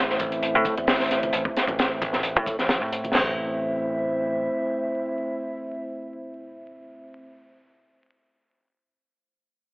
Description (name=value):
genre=breakbeat, breaks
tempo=132 BPM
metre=4/4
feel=straight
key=A minor pentatonic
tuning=A4 = 442 Hz
part: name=dark analog pad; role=sustained chords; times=0.0-7.2 s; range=A3 to E5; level=-28 LUFS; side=equal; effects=chorus, sidechain pumping
part: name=picked electric bass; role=bass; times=0.0-4.5 s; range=A1 to A2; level=-28 LUFS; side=equal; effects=none
part: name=crunchy breakbeat drum kit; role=drums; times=0.1-3.3 s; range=hi-hat, kick drum, snare drum, splash cymbal, toms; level=-23 LUFS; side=equal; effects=none
part: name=electronic hi-hat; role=drums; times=0.2-3.1 s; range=none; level=-39 LUFS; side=equal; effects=none
part: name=congas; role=percussion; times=0.2-3.1 s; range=none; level=-38 LUFS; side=equal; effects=none
room=moderate lush hall reverb, RT60 2.3 s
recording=vinyl crackle, telephone sound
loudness=-22 LUFS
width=side -30 dB against mid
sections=0.0-3.2 A section; 3.2-6.8 B section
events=none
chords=0.0 Am